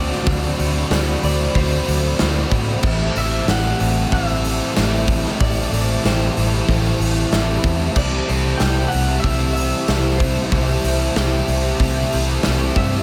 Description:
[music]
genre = rock, shoegaze and dream pop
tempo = 94 BPM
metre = 4/4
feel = straight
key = unclear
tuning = A4 = 440 Hz
[part]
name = electric guitar through a small old amp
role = melody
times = 0.0-13.0 s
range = C5 to G5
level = -30 LUFS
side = equal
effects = tape echo
[part]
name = hollow soft pad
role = sustained chords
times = 0.0-13.0 s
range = F#4 to B5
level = -31 LUFS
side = equal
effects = chorus
[part]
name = clean electric guitar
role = arpeggios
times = 0.0-13.0 s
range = E3 to G4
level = -34 LUFS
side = equal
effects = none
[part]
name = biting overdriven guitar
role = riff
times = 0.0-13.0 s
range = A2 to F#4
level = -24 LUFS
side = equal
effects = lush chorus
[part]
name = vintage muted fingered electric bass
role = bass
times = 0.0-13.0 s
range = A1 to A2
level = -23 LUFS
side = equal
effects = none
[part]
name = big rock drum kit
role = drums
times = 0.1-12.9 s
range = crash cymbal, hi-hat, kick drum, snare drum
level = -24 LUFS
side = equal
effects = none
[part]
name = tambourine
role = percussion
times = 0.9-12.6 s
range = none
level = -38 LUFS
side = equal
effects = none
[sound]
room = light reverb, small room ambience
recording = none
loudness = -19 LUFS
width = mono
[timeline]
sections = 0.0-13.0 A section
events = none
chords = 0.0 D7; 2.8 Am7; 8.0 C6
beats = | 0.27 0.91 1.55 2.19 | 2.84 3.48 4.12 4.76 | 5.40 6.04 6.68 7.33 | 7.97 8.61 9.25 9.89 | 10.53 11.16 11.80 12.44

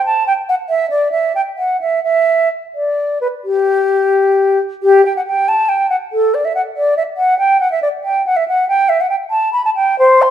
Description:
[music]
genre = classical, baroque-style fantasia for unaccompanied flute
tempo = 84-97 BPM (dotted quarters)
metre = 12/8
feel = rubato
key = G major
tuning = A4 = 440 Hz
[part]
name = mellow concert flute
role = solo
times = 0.0-10.3 s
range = G4 to C6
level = -12 LUFS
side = equal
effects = none
[sound]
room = wet recital hall reverb, RT60 1.5 s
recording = none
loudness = -12 LUFS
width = side -10 dB against mid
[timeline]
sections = 0.0-4.8 A section; 4.8-10.3 A section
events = none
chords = none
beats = 0.06 0.69 1.35 | 2.05 2.75 3.44 4.14 | 4.83 5.47 6.12 6.75 | 7.38 8.03 8.67 9.30 | 9.99

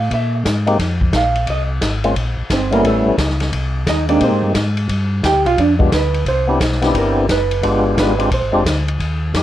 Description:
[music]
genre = soul jazz organ trio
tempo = 176 BPM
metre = 4/4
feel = swing 64% on 8ths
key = C minor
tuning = A4 = 439 Hz
[part]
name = hollow-body jazz guitar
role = accompaniment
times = 0.0-8.8 s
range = A3 to G5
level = -18 LUFS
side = right 4 dB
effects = none
[part]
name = mellow tonewheel organ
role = bass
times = 0.0-9.4 s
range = F1 to Bb2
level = -19 LUFS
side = equal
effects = slow rotary speaker
[part]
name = vintage drum kit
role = drums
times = 0.1-9.4 s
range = hi-hat, kick drum, ride cymbal, snare drum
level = -21 LUFS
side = left 1 dB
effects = none
[part]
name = percussive tonewheel organ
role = melody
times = 0.7-9.4 s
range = G3 to G4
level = -17 LUFS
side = left 2 dB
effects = slow rotary speaker, overdrive
[sound]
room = light reverb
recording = worn, warbling old tape, cassette tape, warbly pitch drift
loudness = -14 LUFS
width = side -12 dB against mid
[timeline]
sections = 0.0-9.0 A section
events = hollow-body jazz guitar solo 0.0-9.0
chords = 0.1 Absus2; 0.8 Fmadd11; 2.2 Bbsus2; 2.8 A9; 3.5 Abmaj9; 4.9 G7; 6.3 Cmaj9; 7.6 G7b9; 8.3 Bb9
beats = 0.11 0.45 | 0.79 1.13 1.47 1.81 | 2.16 2.50 2.84 3.18 | 3.52 3.87 4.21 4.55 | 4.89 5.23 5.57 5.92 | 6.26 6.60 6.94 7.28 | 7.62 7.97 8.31 8.65 | 8.99 9.34

